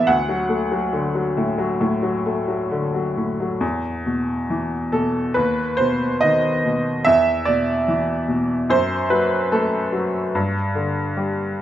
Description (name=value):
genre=classical, lyrical solo piano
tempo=64-74 BPM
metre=4/4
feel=rubato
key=E minor from 3.6 s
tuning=A4 = 440 Hz
part: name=bright upright piano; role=solo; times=0.0-11.6 s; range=D2 to F#5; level=-18 LUFS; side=equal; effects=none
room=moderate recital hall reverb, RT60 1.2 s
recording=none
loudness=-18 LUFS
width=side -12 dB against mid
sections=0.0-3.6 A section; 3.6-11.6 B section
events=none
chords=0.1 D; 3.6 E5; 5.4 B/D#; 7.1 E5; 8.7 F#dim; 10.4 G5